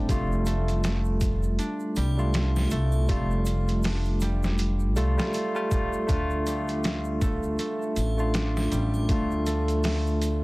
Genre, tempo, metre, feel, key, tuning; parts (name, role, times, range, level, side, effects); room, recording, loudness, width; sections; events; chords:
trip hop; 80 BPM; 4/4; swing 58% on 16ths; A4 = 440 Hz
barky tine electric piano; accompaniment; 0.0-10.4 s; G3 to F4; -29 LUFS; equal; harmonic tremolo, tape echo
concert harp; arpeggios; 0.0-10.4 s; G3 to D4; -34 LUFS; right 1 dB; tape echo
upright bass; bass; 0.0-10.4 s; F1 to D2; -26 LUFS; equal; tube saturation
trip hop sampler-style drum kit; drums; 0.1-10.4 s; hi-hat, kick drum, snare drum; -30 LUFS; equal; soft clipping on snare
egg shaker and triangle; percussion; 0.1-10.4 s; -45 LUFS; right 2 dB
little or no reverb; dense, heavily limited modern master, vinyl crackle; -23 LUFS; side -22 dB against mid
0.0-10.4 A section
0.1 Fadd9; 6.1 Dm